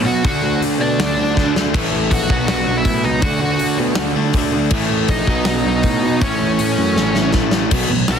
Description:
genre	punk rock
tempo	160 BPM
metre	4/4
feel	straight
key	unclear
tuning	A4 = 438 Hz
part	distorted electric guitar	riff	0.0-8.2 s	A2 to D4	-21 LUFS	right 13 dB	distortion
part	overdriven electric guitar	riff	0.0-8.2 s	A2 to D4	-22 LUFS	left 13 dB	none
part	fuzz picked electric bass	bass	0.0-8.2 s	A1 to D3	-22 LUFS	equal	overdrive
part	high-gain lead guitar	melody	0.1-8.2 s	C#4 to F#5	-21 LUFS	left 1 dB	distortion, digital delay
part	big rock drum kit	drums	0.2-8.2 s	crash cymbal, hi-hat, kick drum, snare drum	-20 LUFS	left 1 dB	soft clipping on snare
room	little or no reverb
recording	dense, heavily limited modern master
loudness	-14 LUFS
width	side -7 dB against mid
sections	0.0-7.7 A section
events	half time 0.0-7.7; drum fill 1.4-1.7, 7.0-7.7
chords	0.2 D; 1.7 A5; 2.3 B; 3.2 D; 4.7 A5; 5.3 B; 6.2 A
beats	| 0.24 0.61 0.99 1.36 | 1.74 2.11 2.48 2.85 | 3.23 3.60 3.98 4.35 | 4.72 5.10 5.47 5.85 | 6.22 6.59 6.97 7.34 | 7.72 8.10

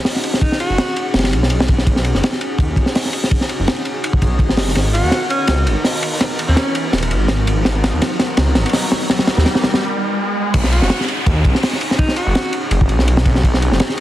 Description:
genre	drum and bass, jungle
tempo	166 BPM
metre	4/4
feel	swing 55% on 16ths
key	unclear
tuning	A4 = 437 Hz
part	warbly tape-like pad	sustained chords	0.0-14.0 s	B3 to A#4	-24 LUFS	equal	chorus, built-in reverb
part	riser and downlifter	sound effects	1.0-13.4 s	none	-26 LUFS	equal	none
part	crunchy breakbeat drum kit	drums	0.1-14.0 s	crash cymbal, hi-hat, kick drum, ride cymbal, snare drum	-16 LUFS	equal	none
part	clear alto saxophone	melody	0.4-1.1, 4.9-6.8, 10.7-12.7 s	C#4 to F#4	-23 LUFS	equal	vintage 12-bit sampler grit, dub echo
part	detuned saw bass	bass	0.7-13.8 s	D#1 to D#2	-17 LUFS	equal	none
room	light reverb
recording	dense, heavily limited modern master, vinyl crackle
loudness	-14 LUFS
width	side -14 dB against mid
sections	0.0-10.5 A section; 10.5-14.0 B section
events	build-up 0.0-10.5; riser 1.0-10.5; drum fill 4.8-9.8; break 9.8-10.5; drop 10.5-14.0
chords	0.0 B6; 4.8 G#m7; 10.5 B6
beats	0.06 | 0.42 0.78 1.15 1.51 | 1.87 2.23 2.59 2.95 | 3.31 3.68 4.04 4.40 | 4.76 5.12 5.48 5.84 | 6.21 6.57 6.93 7.29 | 7.65 8.01 8.37 8.74 | 9.10 9.46 9.82 10.18 | 10.54 10.90 11.27 11.63 | 11.99 12.35 12.71 13.07 | 13.44 13.80

